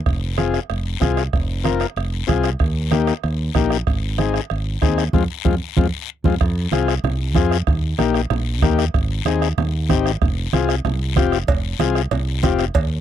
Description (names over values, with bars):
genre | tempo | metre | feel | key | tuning
latin, cumbia | 189 BPM | 4/4 | straight | F minor | A4 = 440 Hz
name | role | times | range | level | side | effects
fingered electric bass | bass | 0.1-13.0 s | F1 to F2 | -22 LUFS | right 1 dB | none
bombo | percussion | 0.1-12.9 s | none | -22 LUFS | right 3 dB | none
congas | percussion | 0.1-12.9 s | none | -25 LUFS | right 4 dB | none
guiro | percussion | 0.1-13.0 s | none | -32 LUFS | left 19 dB | none
combo organ | accompaniment | 0.4-12.7 s | Ab3 to Bb4 | -20 LUFS | left 10 dB | none
cowbell | percussion | 11.5-12.9 s | none | -26 LUFS | right 7 dB | none
room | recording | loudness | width
little or no reverb | dry, close 1970s-style studio recording | -17 LUFS | side -10 dB against mid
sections
0.0-6.4 A section; 6.4-13.0 B section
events
band accent 5.1-6.4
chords
0.1 Fm; 2.6 Eb; 3.9 Ab; 5.1 Fm; 7.7 Eb; 8.9 Ab; 10.2 Fm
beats
| 0.06 0.38 0.69 1.01 | 1.33 1.65 1.96 2.28 | 2.60 2.92 3.23 3.55 | 3.87 4.19 4.50 4.82 | 5.14 5.46 5.77 6.09 | 6.41 6.72 7.04 7.36 | 7.68 7.99 8.31 8.63 | 8.94 9.26 9.58 9.89 | 10.21 10.53 10.84 11.16 | 11.48 11.79 12.11 12.43 | 12.74